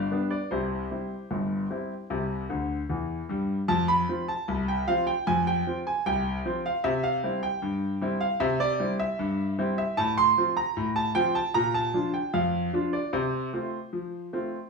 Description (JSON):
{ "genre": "ragtime piano", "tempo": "76 BPM", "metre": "2/4", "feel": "straight", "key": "C major, F major from 10.0 s", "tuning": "A4 = 439 Hz", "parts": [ { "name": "clear grand piano", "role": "solo", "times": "0.0-14.7 s", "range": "G1 to C6", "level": "-25 LUFS", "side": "equal", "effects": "none" } ], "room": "moderate small room reverb, RT60 0.6 s", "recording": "studio reverb", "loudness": "-25 LUFS", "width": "side -4 dB against mid", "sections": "0.0-3.7 A section; 3.7-14.7 B section", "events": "grand piano fill 2.5-3.7", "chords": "0.0 G7; 0.5 C; 3.7 F5; 6.8 C; 10.0 F/A; 11.6 Bb; 13.1 F/C" }